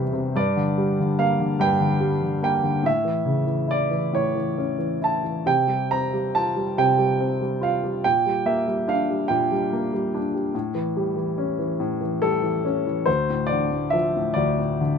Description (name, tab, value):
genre	classical, lyrical solo piano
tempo	47 BPM (dotted quarters)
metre	6/8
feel	rubato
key	unclear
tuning	A4 = 440 Hz
part	warm grand piano	solo	0.0-15.0 s	D2 to Bb5	-20 LUFS	equal	none
room	light reverb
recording	minimal, uncompressed stereo recording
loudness	-20 LUFS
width	side -6 dB against mid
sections	0.0-15.0 A section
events	none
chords	0.4 Gm; 2.9 A; 5.5 Csus4; 8.1 Gm/Bb; 10.5 A7; 13.1 Dm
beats	| 0.36 1.60 | 2.85 4.14 | 5.47 6.78 | 8.06 9.30 | 10.54 11.80 | 13.07 14.37